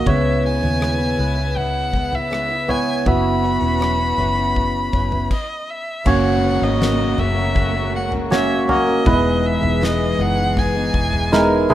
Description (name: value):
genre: pop ballad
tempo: 80 BPM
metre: 4/4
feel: straight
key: unclear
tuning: A4 = 440 Hz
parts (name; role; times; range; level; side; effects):
- warm violin; melody; 0.0-11.7 s; D#5 to B5; -23 LUFS; equal; none
- barky tine electric piano; accompaniment; 0.0-11.7 s; C#3 to E5; -20 LUFS; right 2 dB; lush chorus
- warm studio string section; sustained chords; 0.0-11.7 s; C#3 to G#4; -30 LUFS; left 2 dB; none
- picked steel-string acoustic guitar; arpeggios; 0.0-11.7 s; C#3 to B4; -27 LUFS; left 4 dB; none
- vintage muted fingered electric bass; bass; 0.0-11.7 s; E1 to D#2; -23 LUFS; left 1 dB; none
- damped 70s drum kit; drums; 0.1-11.7 s; crash cymbal, kick drum, rim click, snare drum, toms; -22 LUFS; equal; none
- downlifter; sound effects; 6.1-11.7 s; none; -30 LUFS; left 1 dB; none
room: light reverb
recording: rough home demo mix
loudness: -16 LUFS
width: side -12 dB against mid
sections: 0.0-6.1 A section; 6.1-11.7 B section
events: stop 5.3-6.1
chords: 0.1 C#m7; 3.1 F#7sus4; 6.1 F#; 9.1 Emaj7